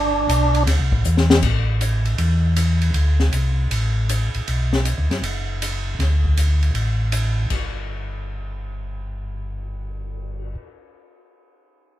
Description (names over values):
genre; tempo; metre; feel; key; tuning
soul jazz organ trio; 158 BPM; 4/4; swing 66% on 8ths; unclear; A4 = 440 Hz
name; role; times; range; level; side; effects
percussive tonewheel organ; melody; 0.0-0.6 s; D4; -19 LUFS; right 2 dB; slow rotary speaker
mellow tonewheel organ; bass; 0.0-10.6 s; F#1 to F#2; -20 LUFS; equal; slow rotary speaker
open jazz drum kit; drums; 0.3-10.5 s; crash cymbal, cymbal swell, hi-hat, kick drum, ride cymbal, snare drum; -24 LUFS; left 2 dB; none
room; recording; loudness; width
moderate studio reverb, RT60 0.5 s; minimal, uncompressed stereo recording; -17 LUFS; side -14 dB against mid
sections
0.0-1.4 A section; 1.4-7.5 B section; 7.5-10.5 C section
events
drum fill 1.0-1.4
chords
0.0 G; 0.7 Dsus2; 1.4 A5; 2.9 D5; 4.5 Bm; 6.0 D5; 7.5 N.C.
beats
0.29 0.67 1.05 | 1.43 1.81 2.19 2.57 | 2.95 3.33 3.71 4.08 | 4.46 4.84 5.22 5.60 | 5.98 6.36 6.74 7.12 | 7.50 7.88 8.27 8.64 | 9.03 9.41 9.79 10.17